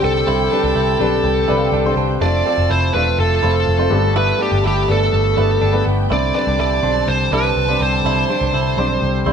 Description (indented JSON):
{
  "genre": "pop",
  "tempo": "124 BPM",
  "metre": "4/4",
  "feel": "straight",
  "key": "C major",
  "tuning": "A4 = 441 Hz",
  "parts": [
    { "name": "high-gain lead guitar", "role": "melody", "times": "0.0-9.3 s", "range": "G4 to D5", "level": "-19 LUFS", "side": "right 2 dB", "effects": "distortion" },
    { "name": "rich studio violin section", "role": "second line", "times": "0.0-9.3 s", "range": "F4 to A5", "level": "-27 LUFS", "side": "right 4 dB", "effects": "none" },
    { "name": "warm upright piano", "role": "accompaniment", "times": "0.0-9.3 s", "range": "G2 to A5", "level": "-21 LUFS", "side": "left 2 dB", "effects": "none" },
    { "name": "bright tonewheel organ", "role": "sustained chords", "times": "0.0-9.3 s", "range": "D3 to C4", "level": "-29 LUFS", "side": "left 1 dB", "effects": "slow rotary speaker" },
    { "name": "vintage muted picked electric bass", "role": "bass", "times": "0.0-9.3 s", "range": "E1 to C2", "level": "-19 LUFS", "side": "equal", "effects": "none" },
    { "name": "direct-recorded clean electric guitar", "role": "riff", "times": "0.3-9.3 s", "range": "B3 to E4", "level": "-26 LUFS", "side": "right 7 dB", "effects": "none" }
  ],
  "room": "moderate stone room reverb, RT60 1.1 s",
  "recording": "band playing live in one room",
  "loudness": "-14 LUFS",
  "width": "side -7 dB against mid",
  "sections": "0.0-9.3 A section",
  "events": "upright piano fill 1.2-2.2",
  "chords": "0.0 Csus2; 2.2 F; 3.9 Gadd9; 6.1 Csus2",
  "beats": "| 0.27 0.76 1.24 1.73 | 2.21 2.70 3.19 3.67 | 4.16 4.64 5.13 5.62 | 6.10 6.59 7.07 7.56 | 8.05 8.53 9.02"
}